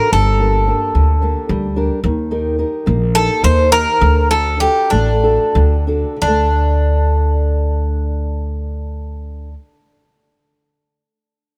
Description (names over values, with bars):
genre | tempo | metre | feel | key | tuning
greek folk, Greek bouzouki band | 176-219 BPM (eighths) | 7/8 | straight | unclear | A4 = 440 Hz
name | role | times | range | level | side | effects
Greek bouzouki | melody | 0.0-9.5 s | D4 to C5 | -19 LUFS | equal | none
fingerpicked old ladder-braced acoustic guitar | accompaniment | 0.0-9.6 s | D3 to Bb4 | -23 LUFS | equal | none
upright bass | bass | 0.1-9.5 s | G1 to Eb2 | -18 LUFS | equal | none
room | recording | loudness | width
light reverb | none | -16 LUFS | mono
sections
0.0-6.2 A section; 6.2-11.0 B section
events
slowing down 2.0-6.2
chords
0.1 Gm; 2.0 Eb; 4.0 D; 6.2 D5